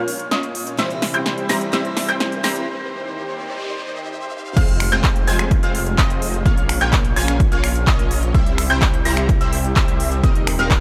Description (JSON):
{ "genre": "EDM, festival progressive house", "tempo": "127 BPM", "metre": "4/4", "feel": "straight", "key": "F minor", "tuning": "A4 = 445 Hz", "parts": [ { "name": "lush unison pad", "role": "sustained chords", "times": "0.0-10.8 s", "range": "Eb2 to Db5", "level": "-31 LUFS", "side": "equal", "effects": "chorus, sidechain pumping" }, { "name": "dark baby grand piano", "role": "arpeggios", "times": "0.0-10.8 s", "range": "Eb6 to Bb6", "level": "-28 LUFS", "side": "equal", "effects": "sidechain pumping, low-pass filter, dub echo" }, { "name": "supersaw stab", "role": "riff", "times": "0.0-10.8 s", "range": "G3 to Bb5", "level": "-28 LUFS", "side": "equal", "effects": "ensemble chorus, sidechain pumping, low-pass filter, dub echo" }, { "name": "riser, noise sweep and impact", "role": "sound effects", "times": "0.2-6.5 s", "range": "none", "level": "-36 LUFS", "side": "equal", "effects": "none" }, { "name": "big-room dance drum kit", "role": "drums", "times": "0.1-10.8 s", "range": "crash cymbal, finger snaps, handclaps, hi-hat, snare drum", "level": "-26 LUFS", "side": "equal", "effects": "overdrive" }, { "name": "picked steel-string acoustic guitar", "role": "accompaniment", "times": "0.8-2.7 s", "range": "E3 to E4", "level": "-34 LUFS", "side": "equal", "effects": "sidechain pumping, dub echo" }, { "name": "detuned saw bass", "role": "bass", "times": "4.6-10.8 s", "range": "Eb1 to C2", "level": "-25 LUFS", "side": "equal", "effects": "chorus, sidechain pumping" }, { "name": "electronic kick drum", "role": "drums", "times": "4.6-10.8 s", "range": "none", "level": "-20 LUFS", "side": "equal", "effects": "overdrive" } ], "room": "light reverb, digital ambience", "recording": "high-pass filter", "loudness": "-19 LUFS", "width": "mono", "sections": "0.0-4.6 A section; 4.6-10.8 B section", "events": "build-up 0.0-4.6; drum fill 0.0-2.7; filter sweep on supersaw synth 0.0-4.6; riser 0.8-4.6; break 2.7-4.6; noise sweep 2.7-4.6; drop 4.6-10.8; impact 4.6-6.5", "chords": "0.0 Bbm; 0.8 C; 2.7 Eb6; 4.6 Fm; 6.5 Bbm; 8.3 C; 10.2 Eb6" }